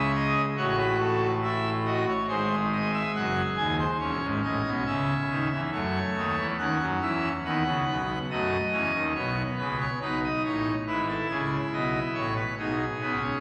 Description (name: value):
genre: classical, baroque-style 4-part fugue for pipe organ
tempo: 70 BPM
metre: 4/4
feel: straight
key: F# minor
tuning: A4 = 442 Hz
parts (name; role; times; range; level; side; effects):
- pipe organ, full organ; solo; 0.0-13.4 s; D#1 to G#5; -27 LUFS; equal; none
room: wet church reverb, RT60 2.7 s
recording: vinyl crackle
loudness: -27 LUFS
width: mono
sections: 0.0-5.7 A section; 5.7-13.4 B section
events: none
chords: 0.0 C#m; 0.6 F#m/A; 2.3 G#7; 4.0 C#m/E; 5.7 F#m; 7.5 D#dim; 9.2 B9; 10.9 E/G#; 12.6 G#m/B